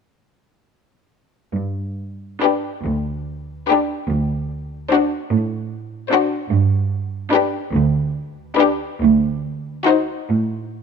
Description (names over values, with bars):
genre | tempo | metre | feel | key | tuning
classical, slow romantic movement for string orchestra | 48 BPM (dotted quarters) | 6/8 | uneven beats, rubato | G major | A4 = 441 Hz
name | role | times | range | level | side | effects
warm studio cello section | bass | 1.5-10.8 s | D2 to A2 | -19 LUFS | right 4 dB | none
warm studio violin section | melody | 2.4-10.2 s | B4 to C5 | -23 LUFS | left 9 dB | none
warm studio violin section | second line | 2.4-10.2 s | F#4 to G4 | -22 LUFS | left 6 dB | none
rich studio viola section | accompaniment | 2.4-10.2 s | D4 to Eb4 | -21 LUFS | left 3 dB | none
room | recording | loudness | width
light reverb | close, detailed microphones | -18 LUFS | side -6 dB against mid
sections
1.6-10.8 A section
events
none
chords
1.6 G; 4.1 D7; 6.5 G; 9.0 D5